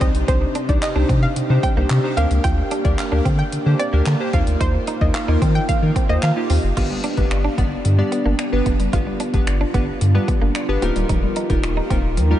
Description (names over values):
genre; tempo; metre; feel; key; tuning
dance-pop; 111 BPM; 4/4; straight; unclear; A4 = 438 Hz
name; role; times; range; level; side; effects
analog pluck; melody; 0.0-6.6 s; C5 to G5; -27 LUFS; right 1 dB; chorus, sidechain pumping, analog delay
glassy digital keys; accompaniment; 0.0-12.4 s; Bb3 to D5; -26 LUFS; left 1 dB; chorus, sidechain pumping
chorused pulse-width pad; sustained chords; 0.0-12.4 s; C3 to Bb4; -27 LUFS; right 1 dB; sidechain pumping
direct-recorded clean electric guitar; riff; 0.0-12.2 s; Bb3 to F4; -30 LUFS; right 4 dB; wide subtle chorus
warm sub bass; bass; 0.0-12.3 s; D1 to Eb3; -19 LUFS; equal; sidechain pumping
deep house drum kit; drums; 0.0-12.3 s; crash cymbal, finger snaps, handclaps, hi-hat, kick drum; -22 LUFS; equal; overdrive
mallet-like synth pluck; arpeggios; 6.8-12.4 s; D3 to D5; -28 LUFS; left 3 dB; chorus, sidechain pumping, analog delay
room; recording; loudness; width
light reverb; nothing above 10.5 kHz; -16 LUFS; side -12 dB against mid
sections
0.0-6.8 A section; 6.8-12.4 B section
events
none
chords
0.0 Cmadd9; 2.2 Gm; 4.3 Ebsus2; 6.8 G; 10.8 Ebadd9